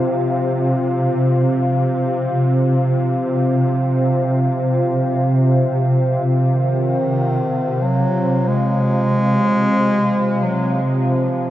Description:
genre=dark ambient drone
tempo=free time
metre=none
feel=none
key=F phrygian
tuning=A4 = 440 Hz
part: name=dark analog pad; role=sustained chords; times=0.0-11.5 s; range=C4 to F5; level=-20 LUFS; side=equal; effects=chorus
part: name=swarming drone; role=drone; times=0.0-11.5 s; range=C3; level=-18 LUFS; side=equal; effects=built-in reverb
part: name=mellow bass clarinet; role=melody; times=6.5-11.5 s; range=Eb3 to Ab3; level=-19 LUFS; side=equal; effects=diffuse ambient delay
room=wet huge ambient reverb, RT60 8.6 s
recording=worn, warbling old tape, cassette tape, warbly pitch drift, nothing above 7.8 kHz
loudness=-15 LUFS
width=side -13 dB against mid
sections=0.0-11.5 A section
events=none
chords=0.0 F5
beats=free time

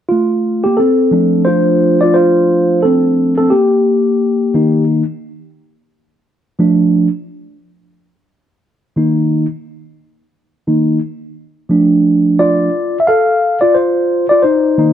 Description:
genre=hip hop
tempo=88 BPM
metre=4/4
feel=swing 60% on 16ths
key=F mixolydian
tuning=A4 = 440 Hz
part: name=mellow tine electric piano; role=solo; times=0.1-14.9 s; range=Eb3 to F5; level=-10 LUFS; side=equal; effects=lush chorus
room=moderate echo chamber reverb, RT60 1.4 s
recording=none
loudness=-11 LUFS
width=side -10 dB against mid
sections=0.8-14.9 A section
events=tine electric piano solo 0.8-14.9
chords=0.0 Gm9/A; 0.8 F6; 3.5 Eb; 6.2 F6; 9.0 Eb5; 11.7 F6; 14.4 Cm7/Eb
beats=0.11 | 0.79 1.47 2.15 2.84 | 3.52 4.20 4.88 5.56 | 6.25 6.93 7.61 8.29 | 8.97 9.65 10.34 11.02 | 11.70 12.38 13.06 13.74 | 14.43

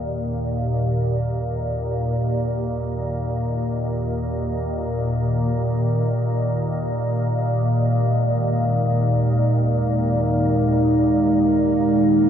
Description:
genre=dark ambient drone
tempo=free time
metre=none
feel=none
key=unclear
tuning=A4 = 442 Hz
part: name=organ-like drone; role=drone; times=0.0-12.3 s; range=Eb2 to Bb2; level=-20 LUFS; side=equal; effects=ensemble chorus, built-in reverb
part: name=dark analog pad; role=sustained chords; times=7.7-12.3 s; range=Ab3 to Bb4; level=-20 LUFS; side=right 1 dB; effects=chorus
room=wet cathedral reverb, RT60 5.0 s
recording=in a vast, echoing space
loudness=-19 LUFS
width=side -9 dB against mid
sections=0.0-12.3 A section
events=none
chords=0.0 Eb5; 7.7 Ab5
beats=free time

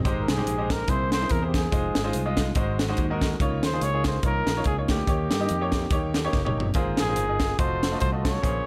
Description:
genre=uptempo gospel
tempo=143 BPM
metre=4/4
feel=swing 56% on 8ths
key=Ab major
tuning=A4 = 440 Hz
part: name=clear baby grand piano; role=accompaniment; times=0.0-8.7 s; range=Ab2 to Eb5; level=-32 LUFS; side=equal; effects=none
part: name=fingered electric bass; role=bass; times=0.0-8.6 s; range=F1 to G2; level=-31 LUFS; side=equal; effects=none
part: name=crisp fusion drum kit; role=drums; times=0.1-8.5 s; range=hi-hat, kick drum, snare drum, toms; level=-28 LUFS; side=equal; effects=none
part: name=breathy trumpet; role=melody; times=0.2-8.7 s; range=G4 to Db5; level=-31 LUFS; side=equal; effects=none
room=light reverb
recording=none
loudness=-25 LUFS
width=mono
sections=0.1-8.7 A section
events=drum fill 6.3-6.8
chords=0.1 Abmaj7; 0.9 C7b13; 1.7 Fm7; 2.6 Ab7; 3.4 Db69; 5.1 Eb7; 6.8 Ab69; 7.6 F7b9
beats=| 0.05 0.47 0.89 1.31 | 1.73 2.14 2.56 2.98 | 3.40 3.82 4.24 4.66 | 5.07 5.49 5.91 6.33 | 6.75 7.17 7.59 8.01 | 8.43

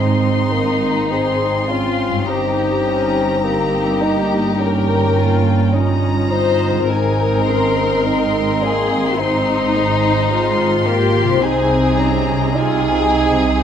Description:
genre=classical, slow romantic movement for symphony orchestra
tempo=52 BPM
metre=4/4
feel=rubato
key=Ab major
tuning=A4 = 440 Hz
part: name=rich chamber violin section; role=melody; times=0.0-13.6 s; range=G5 to C6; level=-25 LUFS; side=left 4 dB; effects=none
part: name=rich chamber violin section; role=second line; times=0.0-13.6 s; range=Eb4 to C5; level=-21 LUFS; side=left 3 dB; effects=none
part: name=warm clarinet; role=second line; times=0.0-13.6 s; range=C4 to F4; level=-24 LUFS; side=left 2 dB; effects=none
part: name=dark bassoon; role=accompaniment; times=0.0-13.6 s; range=Bb3 to Eb4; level=-21 LUFS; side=equal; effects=none
part: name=warm studio viola section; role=accompaniment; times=0.0-13.6 s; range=Ab3 to Ab4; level=-24 LUFS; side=equal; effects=none
part: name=concert harp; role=arpeggios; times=0.0-13.6 s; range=G2 to Bb4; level=-26 LUFS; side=left 8 dB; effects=none
part: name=rich chamber cello section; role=bass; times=0.0-13.6 s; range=G2 to C3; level=-22 LUFS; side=right 3 dB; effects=none
part: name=warm chamber double bass section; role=bass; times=0.0-13.6 s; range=G1 to C2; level=-23 LUFS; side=right 4 dB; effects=none
room=moderate scoring stage reverb, RT60 1.9 s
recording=none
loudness=-14 LUFS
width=side -8 dB against mid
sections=0.0-13.6 A section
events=none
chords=0.0 Ab; 2.3 Eb7/G; 6.9 Ab; 11.4 Ab/C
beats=1.11 | 2.27 3.44 4.60 5.73 | 6.90 8.06 9.19 10.31 | 11.42 12.54

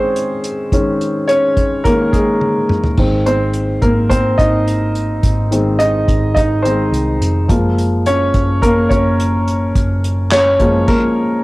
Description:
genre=piano-driven pop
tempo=106 BPM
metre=4/4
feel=straight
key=Ab mixolydian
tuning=A4 = 440 Hz
part: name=warm baby grand piano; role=accompaniment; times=0.0-11.4 s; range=Eb3 to Eb5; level=-14 LUFS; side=equal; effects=cassette tape
part: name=unplugged drum kit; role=drums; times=0.2-11.0 s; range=crash cymbal, handclaps, hi-hat, kick drum, snare drum, toms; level=-18 LUFS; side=equal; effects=cassette tape
part: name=hollow-body short-scale picked electric bass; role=bass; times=3.0-10.9 s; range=F1 to C2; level=-18 LUFS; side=equal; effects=none
room=light reverb, studio ambience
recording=home recording on cassette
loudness=-12 LUFS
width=side -20 dB against mid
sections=0.0-11.4 A section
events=grand piano solo 0.0-11.4; drum fill 2.4-3.0; stop 10.9-11.4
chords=0.0 Dbsus2; 3.0 Ab; 7.5 Gbmaj7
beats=0.15 | 0.72 1.28 1.85 2.41 | 2.98 3.54 4.11 4.67 | 5.24 5.80 6.37 6.93 | 7.50 8.06 8.62 9.19 | 9.75 10.32 10.88

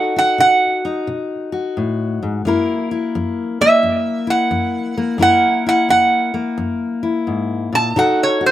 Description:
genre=acoustic country blues, solo or duo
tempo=87 BPM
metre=4/4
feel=swing 66% on 8ths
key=F# mixolydian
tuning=A4 = 440 Hz
part: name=lap resonator guitar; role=melody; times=0.0-8.5 s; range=B#4 to A5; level=-14 LUFS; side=right 2 dB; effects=slapback echo
part: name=fingerpicked steel-string acoustic guitar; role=accompaniment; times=0.0-8.5 s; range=F#2 to A#4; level=-19 LUFS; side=left 3 dB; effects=slapback echo
room=little or no reverb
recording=recorded outdoors, with no room sound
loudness=-15 LUFS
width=side -12 dB against mid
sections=0.0-8.5 A section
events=resonator guitar played with a steel bar solo 0.0-8.5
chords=0.0 B7; 2.5 F#7; 8.0 B7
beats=0.39 1.08 1.76 | 2.45 3.14 3.83 4.51 | 5.20 5.89 6.58 7.27 | 7.96

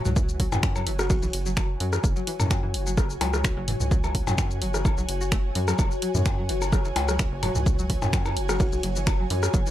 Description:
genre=minimal techno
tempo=128 BPM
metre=4/4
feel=swing 53% on 16ths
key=unclear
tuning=A4 = 439 Hz
part: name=ethereal airy pad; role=texture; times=0.0-9.7 s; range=F#4 to G#5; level=-32 LUFS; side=left 1 dB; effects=ensemble chorus, built-in reverb, sidechain pumping
part: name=string-like resonator pluck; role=riff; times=0.1-9.7 s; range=E3 to F#4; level=-35 LUFS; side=equal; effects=wide subtle chorus, cassette tape, sidechain pumping, digital delay
part: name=rubbery square bass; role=bass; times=0.1-9.6 s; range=F#1 to F#2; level=-28 LUFS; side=equal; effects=sidechain pumping
part: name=garage drum kit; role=drums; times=0.1-9.7 s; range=finger snaps, hi-hat, shaker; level=-32 LUFS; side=left 1 dB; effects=small room ambience
part: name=minimal click drum kit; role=percussion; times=0.1-9.5 s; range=percussion blips, rim click, toms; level=-29 LUFS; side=left 2 dB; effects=small room ambience
part: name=electronic kick drum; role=drums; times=0.2-9.6 s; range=none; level=-24 LUFS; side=equal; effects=overdrive, small room ambience
part: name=buzzing kalimba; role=melody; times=1.0-1.2, 8.5-8.7 s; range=F#4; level=-35 LUFS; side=equal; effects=tape echo
room=light reverb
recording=none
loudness=-22 LUFS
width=side -13 dB against mid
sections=0.0-9.7 A section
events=none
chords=0.0 F#5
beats=| 0.16 0.63 1.10 1.57 | 2.04 2.51 2.98 3.44 | 3.91 4.38 4.85 5.32 | 5.79 6.26 6.73 7.20 | 7.66 8.13 8.60 9.07 | 9.54

